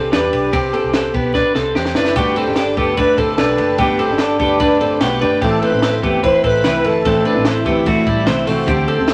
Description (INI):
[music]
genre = jangly indie pop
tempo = 147 BPM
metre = 4/4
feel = straight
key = unclear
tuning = A4 = 440 Hz
[part]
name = mellow wooden-headed alto flute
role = melody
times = 0.0-9.1 s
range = D4 to C5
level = -22 LUFS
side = equal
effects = none
[part]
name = twelve-string electric guitar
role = arpeggios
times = 0.0-9.1 s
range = G3 to C5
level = -20 LUFS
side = equal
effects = spring reverb
[part]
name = vintage muted picked electric bass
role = bass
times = 0.0-9.1 s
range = F#1 to E2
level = -29 LUFS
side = equal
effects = none
[part]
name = compact cocktail drum kit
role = drums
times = 0.1-9.1 s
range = hi-hat, kick drum, ride cymbal, snare drum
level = -24 LUFS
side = equal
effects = none
[part]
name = clear studio violin section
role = second line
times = 2.0-9.1 s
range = D5 to C6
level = -33 LUFS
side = equal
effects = none
[part]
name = picked steel-string acoustic guitar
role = accompaniment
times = 2.2-9.1 s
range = A2 to B4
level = -23 LUFS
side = equal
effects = none
[sound]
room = moderate small room reverb, RT60 0.6 s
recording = vinyl crackle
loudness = -16 LUFS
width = mono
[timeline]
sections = 0.0-9.1 A section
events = drum fill 1.3-2.2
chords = 0.0 Cadd9; 2.2 Gadd9; 5.4 Am